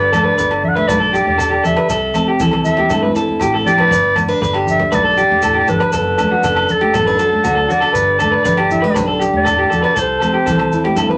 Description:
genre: highlife guitar band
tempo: 119 BPM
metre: 4/4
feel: straight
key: G major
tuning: A4 = 437 Hz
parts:
  - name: breathy clarinet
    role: melody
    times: 0.0-11.0 s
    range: A4 to F#5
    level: -18 LUFS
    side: equal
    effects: none
  - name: fingerpicked steel-string acoustic guitar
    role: accompaniment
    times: 0.0-11.2 s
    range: F#2 to G4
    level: -24 LUFS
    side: equal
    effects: none
  - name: electric guitar through a small old amp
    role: arpeggios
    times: 0.0-11.2 s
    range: F#4 to B4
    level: -19 LUFS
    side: equal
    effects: none
  - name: fingered electric bass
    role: bass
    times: 0.0-11.2 s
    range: E1 to G2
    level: -28 LUFS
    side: equal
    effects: none
  - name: cajon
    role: drums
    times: 0.1-11.0 s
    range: none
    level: -32 LUFS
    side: equal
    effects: none
  - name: agogo bells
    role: percussion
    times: 0.1-11.1 s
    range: none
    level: -29 LUFS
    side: equal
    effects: none
  - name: congas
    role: percussion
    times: 0.1-11.2 s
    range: none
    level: -24 LUFS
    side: equal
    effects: none
  - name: maracas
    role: percussion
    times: 0.1-11.1 s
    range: none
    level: -38 LUFS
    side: equal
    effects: none
room: wet club reverb, RT60 0.5 s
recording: none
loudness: -15 LUFS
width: mono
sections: 0.0-11.2 A section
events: drum fill 3.5-3.9; kick and snare drop out 11.0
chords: 0.0 G; 1.9 C; 3.9 G; 5.9 D/F#; 8.0 G; 10.0 C

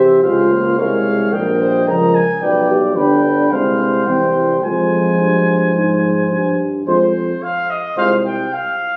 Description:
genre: classical, brass quintet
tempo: 109 BPM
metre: 4/4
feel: straight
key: F minor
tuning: A4 = 439 Hz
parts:
  - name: clear trumpet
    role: melody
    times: 0.0-9.0 s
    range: C5 to Bb5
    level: -24 LUFS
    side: equal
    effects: none
  - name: warm flugelhorn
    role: second line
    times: 0.0-8.2 s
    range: B4 to Eb5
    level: -22 LUFS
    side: equal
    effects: none
  - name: dark French horn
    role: accompaniment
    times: 0.0-8.2 s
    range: G3 to C5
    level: -20 LUFS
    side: equal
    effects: none
  - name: mellow trombone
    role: accompaniment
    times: 0.0-8.2 s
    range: E3 to Bb3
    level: -24 LUFS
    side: equal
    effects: none
  - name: clear tuba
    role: bass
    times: 0.0-8.4 s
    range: G1 to C3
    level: -22 LUFS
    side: equal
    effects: none
room: wet recital hall reverb, RT60 1.7 s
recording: recorded on a phone in the room, studio reverb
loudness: -16 LUFS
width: mono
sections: 0.0-6.9 A section; 6.9-9.0 A section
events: none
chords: 0.2 Dbmaj7; 1.3 Gm7b5/Bb; 2.4 G/B; 3.5 Fm/C; 4.1 C; 4.6 Fm

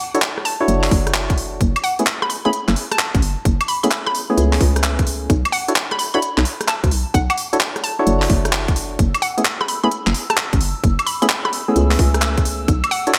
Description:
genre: UK garage, two-step garage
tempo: 130 BPM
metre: 4/4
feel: swing 67% on 16ths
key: F# minor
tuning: A4 = 441 Hz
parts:
  - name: percussive organ stab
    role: stabs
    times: 0.1-13.1 s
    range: A3 to C#5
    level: -24 LUFS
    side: equal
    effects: chorus, digital delay
  - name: garage drum kit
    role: drums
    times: 0.1-13.2 s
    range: handclaps, hi-hat, rim click, woodblock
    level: -24 LUFS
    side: equal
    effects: gated reverb
  - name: hollow square pluck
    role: melody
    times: 0.5-13.1 s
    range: F#5 to B5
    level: -26 LUFS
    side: equal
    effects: chorus
  - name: hollow knocking FM bass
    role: bass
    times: 0.7-12.8 s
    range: F#1 to D2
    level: -21 LUFS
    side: equal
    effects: none
  - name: electronic kick drum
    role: drums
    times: 0.9-12.8 s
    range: none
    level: -21 LUFS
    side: equal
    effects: none
  - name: airy breathy pad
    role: sustained chords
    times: 9.1-13.2 s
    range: E6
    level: -34 LUFS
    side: equal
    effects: chorus, sidechain pumping
room: light reverb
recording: bright 1980s-style digital production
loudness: -18 LUFS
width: mono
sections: 0.0-13.2 A section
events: none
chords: 0.0 Bm11 (rootless); 1.6 F#m11; 5.3 Bm11; 9.0 F#m11; 12.7 Bm11

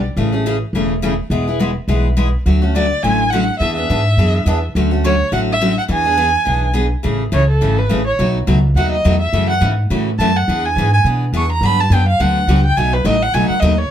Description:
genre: acoustic string swing (jazz manouche)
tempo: 210 BPM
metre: 4/4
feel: swing 57% on 8ths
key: A major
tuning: A4 = 440 Hz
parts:
  - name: upright bass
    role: bass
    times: 0.0-13.9 s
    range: E1 to B2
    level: -16 LUFS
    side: equal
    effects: none
  - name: picked steel-string acoustic guitar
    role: accompaniment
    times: 0.2-13.7 s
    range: B2 to G#4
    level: -19 LUFS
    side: left 1 dB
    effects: none
  - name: warm violin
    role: melody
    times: 2.8-13.9 s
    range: A4 to C#6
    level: -18 LUFS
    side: right 2 dB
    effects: none
room: light reverb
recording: none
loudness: -13 LUFS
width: side -10 dB against mid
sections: 0.0-7.0 A section; 7.0-13.9 B section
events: violin solo 7.0-13.9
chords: 0.2 Amaj7; 1.3 E; 2.5 Dmaj7; 3.6 E7; 4.7 Dmaj7; 5.9 E7; 7.0 Amaj7; 8.2 B7; 9.3 F#m7; 10.5 E7; 11.6 Gmaj7; 12.8 B7

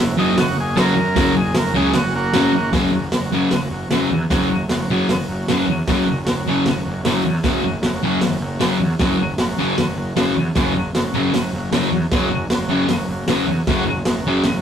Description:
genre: garage rock duo or trio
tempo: 154 BPM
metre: 4/4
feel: straight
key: F# mixolydian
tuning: A4 = 440 Hz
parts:
  - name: combo organ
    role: sustained chords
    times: 0.0-14.6 s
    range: F#4 to E5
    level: -31 LUFS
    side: right 1 dB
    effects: none
  - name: fuzz picked electric bass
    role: bass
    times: 0.0-14.6 s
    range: F#1 to F#2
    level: -24 LUFS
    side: equal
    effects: overdrive
  - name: combo organ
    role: melody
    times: 0.2-2.7 s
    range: A#3 to A#4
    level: -23 LUFS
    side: right 2 dB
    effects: spring reverb, analog delay
  - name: thick fuzz guitar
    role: riff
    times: 0.2-14.4 s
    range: F#2 to F#3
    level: -19 LUFS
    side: left 1 dB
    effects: distortion
  - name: raw garage drum kit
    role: drums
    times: 0.4-14.5 s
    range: hi-hat, kick drum, snare drum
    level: -22 LUFS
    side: right 1 dB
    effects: none
room: moderate studio reverb, RT60 0.6 s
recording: rough rehearsal-room recording, warm saturation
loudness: -16 LUFS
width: side -8 dB against mid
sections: 0.0-2.7 A section; 2.7-14.6 B section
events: transistor combo organ solo 0.0-2.7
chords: 0.0 F#

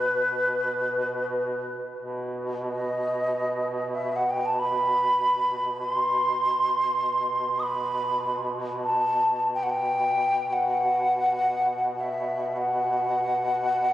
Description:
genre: caucasian folk, Caucasian lament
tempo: free time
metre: none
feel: none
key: B phrygian dominant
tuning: A4 = 440 Hz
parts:
  - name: breathy wooden flute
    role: melody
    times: 0.0-13.9 s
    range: B4 to D#6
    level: -24 LUFS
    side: equal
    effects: none
  - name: warm duduk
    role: drone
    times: 0.0-13.9 s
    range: B2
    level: -32 LUFS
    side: right 1 dB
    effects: none
room: wet cathedral reverb, RT60 5.3 s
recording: recorded on a phone in the room, studio reverb, compression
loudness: -23 LUFS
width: side -13 dB against mid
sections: 0.0-2.0 A section; 2.0-13.9 A section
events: none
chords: none

